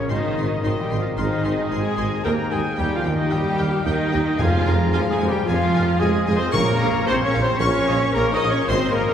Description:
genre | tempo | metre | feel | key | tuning
cinematic, heroic adventure film score | 112 BPM | 4/4 | straight | Bb dorian | A4 = 439 Hz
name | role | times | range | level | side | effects
clear oboe | second line | 0.0-9.1 s | C5 to Bb5 | -31 LUFS | equal | none
mellow clarinet | second line | 0.0-9.1 s | Db4 to Eb5 | -30 LUFS | left 1 dB | none
rich symphonic violin section | second line | 0.0-9.1 s | Eb5 to Eb6 | -33 LUFS | left 3 dB | none
silver concert flute | second line | 0.0-9.1 s | Eb5 to Eb6 | -31 LUFS | left 2 dB | none
warm symphonic viola section | accompaniment | 0.0-9.1 s | Eb4 to Eb5 | -25 LUFS | right 1 dB | none
dark French horn section | sustained chords | 0.0-8.9 s | Bb3 to Bb4 | -31 LUFS | left 3 dB | none
concert harp | arpeggios | 0.0-9.1 s | Ab2 to C6 | -33 LUFS | left 5 dB | none
rich chamber cello section | bass | 0.0-9.1 s | Eb3 to Eb4 | -25 LUFS | right 1 dB | none
warm symphonic violin section | melody | 0.1-9.0 s | Eb5 to Db6 | -33 LUFS | left 4 dB | none
dark symphonic double bass section | bass | 0.1-9.0 s | Ab1 to F2 | -26 LUFS | right 1 dB | none
mellow tuba | bass | 0.1-9.1 s | F1 to Eb2 | -27 LUFS | right 2 dB | none
timpani | percussion | 4.4-7.3 s | F2 to Bb2 | -29 LUFS | left 1 dB | none
room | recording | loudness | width
wet cathedral reverb, RT60 5.0 s | recorded in a church or concert hall | -18 LUFS | side -9 dB against mid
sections
0.0-9.1 A section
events
none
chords
0.1 Ab; 2.2 Eb; 4.4 Fm; 6.5 Bbm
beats
| 0.10 0.64 1.18 1.71 | 2.25 2.78 3.32 3.86 | 4.40 4.93 5.47 6.01 | 6.54 7.08 7.61 8.15 | 8.69

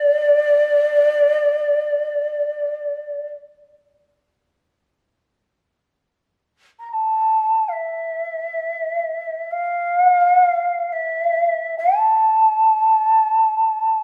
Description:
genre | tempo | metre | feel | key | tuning
japanese traditional, Japanese chamber music | free time | none | none | D hirajoshi | A4 = 439 Hz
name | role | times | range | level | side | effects
mellow hollow shakuhachi | solo | 0.0-3.3, 6.8-14.0 s | D5 to Bb5 | -19 LUFS | equal | none
room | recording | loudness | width
moderate recital hall reverb, RT60 1.5 s | none | -19 LUFS | mono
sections
0.0-5.3 A section; 5.3-14.0 A section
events
none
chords
none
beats
free time

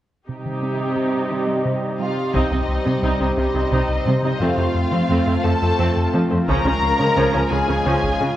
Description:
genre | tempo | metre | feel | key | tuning
cinematic, hybrid orchestral and electronic film score | 58 BPM (dotted quarters) | 6/8 | straight | C phrygian | A4 = 440 Hz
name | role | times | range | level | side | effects
clear symphonic viola section | accompaniment | 0.3-8.3 s | Db3 to G4 | -26 LUFS | right 1 dB | none
chorused pulse-width pad | sustained chords | 0.3-8.4 s | G3 to F5 | -23 LUFS | right 1 dB | none
tight sequenced synth | arpeggios | 0.3-8.3 s | C3 to F4 | -30 LUFS | equal | none
rich symphonic cello section | bass | 0.3-8.3 s | F2 to Db3 | -25 LUFS | right 2 dB | none
rich studio violin section | melody | 2.0-8.4 s | Eb5 to Bb5 | -26 LUFS | left 4 dB | none
warm symphonic violin section | second line | 2.0-8.4 s | Eb4 to Bb4 | -26 LUFS | left 1 dB | none
smooth gliding synth bass | riff | 2.3-8.3 s | C2 to F3 | -22 LUFS | left 1 dB | none
taiko ensemble | drums | 2.3-8.4 s | none | -28 LUFS | equal | none
room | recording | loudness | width
moderate scoring stage reverb, RT60 2.1 s | worn, warbling old tape, cassette tape, warbly pitch drift | -17 LUFS | side -13 dB against mid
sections
0.3-2.3 A section; 2.3-8.4 B section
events
none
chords
0.3 Cm; 4.4 F; 6.5 Db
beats
| 0.28 1.31 | 2.35 3.38 | 4.42 5.45 | 6.49 7.52

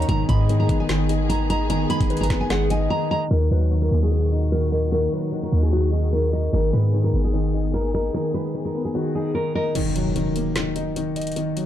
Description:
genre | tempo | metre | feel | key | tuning
hip hop, trap | 149 BPM | 4/4 | half-time | Eb minor | A4 = 440 Hz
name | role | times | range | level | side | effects
nylon-string guitar | melody | 0.0-9.7 s | Gb4 to Cb6 | -26 LUFS | equal | low-pass filter, tape echo
soft octave-layered synth lead | second line | 0.0-3.3 s | Ab4 to Eb5 | -31 LUFS | left 2 dB | chorus, tape echo
dark grand piano | accompaniment | 0.0-11.7 s | Eb3 to Eb5 | -25 LUFS | left 1 dB | low-pass filter
muted symphonic string section | sustained chords | 0.0-9.7 s | Bb2 to Ab4 | -33 LUFS | left 1 dB | none
warm 808-style bass | bass | 0.0-8.1 s | Ab1 to Ab2 | -21 LUFS | equal | none
trap drum kit | drums | 0.0-2.8, 9.8-11.7 s | crash cymbal, hi-hat, kick drum, snare drum | -26 LUFS | equal | none
impact | sound effects | 9.8-11.4 s | none | -29 LUFS | equal | none
room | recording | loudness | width
digital ambience | dark, warm production, low-pass filter | -19 LUFS | side -11 dB against mid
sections
0.0-3.3 A section; 3.3-9.8 B section; 9.8-11.7 C section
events
drums muted 2.9-3.3; filter sweep 3.3-9.8; break 8.1-9.8; kick muted 9.8-11.7; impact 9.8-11.4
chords
0.1 Abm; 3.3 Ebm; 6.5 Abm; 9.8 Ebm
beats
| 0.09 0.49 0.89 1.30 | 1.70 2.10 2.50 2.91 | 3.31 3.71 4.12 4.52 | 4.92 5.32 5.72 6.13 | 6.53 6.93 7.34 7.74 | 8.14 8.54 8.95 9.35 | 9.75 10.15 10.56 10.96 | 11.36

